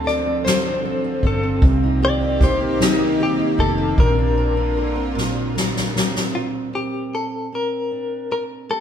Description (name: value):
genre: six-eight pop ballad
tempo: 51 BPM (dotted quarters)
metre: 6/8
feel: straight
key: Bb major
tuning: A4 = 444 Hz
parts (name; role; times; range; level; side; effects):
- direct-recorded clean electric guitar; melody; 0.0-8.8 s; Eb4 to D5; -23 LUFS; left 3 dB; tremolo
- mellow French horn section; second line; 0.0-6.3 s; C4 to A4; -26 LUFS; left 2 dB; none
- fingerpicked steel-string acoustic guitar; accompaniment; 0.0-8.8 s; Bb2 to Bb4; -25 LUFS; right 4 dB; none
- lush unison pad; sustained chords; 0.0-6.3 s; D3 to G4; -27 LUFS; right 1 dB; chorus
- vintage muted fingered electric bass; bass; 0.0-6.3 s; F1 to D2; -24 LUFS; equal; none
- soft-mallet drum kit; drums; 0.1-6.3 s; kick drum, ride cymbal, snare drum; -21 LUFS; left 1 dB; none
room: moderate stone room reverb, RT60 1.2 s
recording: band playing live in one room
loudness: -17 LUFS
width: side -9 dB against mid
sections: 0.0-6.3 A section; 6.3-8.8 B section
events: drum fill 5.2-6.3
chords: 0.0 Dm7; 1.6 Cm7; 4.0 Bbadd9